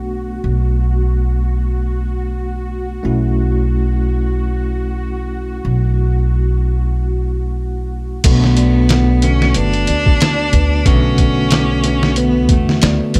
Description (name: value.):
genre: trip hop.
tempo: 92 BPM.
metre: 4/4.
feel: swing 57% on 16ths.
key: B minor.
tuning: A4 = 440 Hz.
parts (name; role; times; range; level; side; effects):
bell-like tine electric piano; accompaniment; 0.0-13.2 s; D3 to F#4; -24 LUFS; equal; tremolo, vintage 12-bit sampler grit, tape echo.
upright bass; bass; 0.0-13.2 s; F#1 to E2; -19 LUFS; equal; none.
bowed-like drone; texture; 0.0-8.3 s; F#4; -31 LUFS; equal; built-in reverb.
celesta; arpeggios; 8.2-13.2 s; A4 to D6; -30 LUFS; equal; tape echo.
trip hop sampler-style drum kit; drums; 8.2-13.2 s; crash cymbal, hi-hat, kick drum, snare drum; -18 LUFS; equal; small room reverb.
rich cello; melody; 8.3-13.2 s; A3 to D4; -20 LUFS; equal; vintage 12-bit sampler grit, tape echo.
room: studio ambience.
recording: none.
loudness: -16 LUFS.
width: mono.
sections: 0.0-8.3 A section; 8.3-13.2 B section.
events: none.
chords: 0.0 Bm7; 3.0 F#m7/B; 8.3 Bm7.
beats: | 0.42 1.08 1.73 2.38 | 3.03 3.69 4.34 4.99 | 5.64 6.29 6.95 7.60 | 8.25 8.90 9.55 10.21 | 10.86 11.51 12.16 12.82.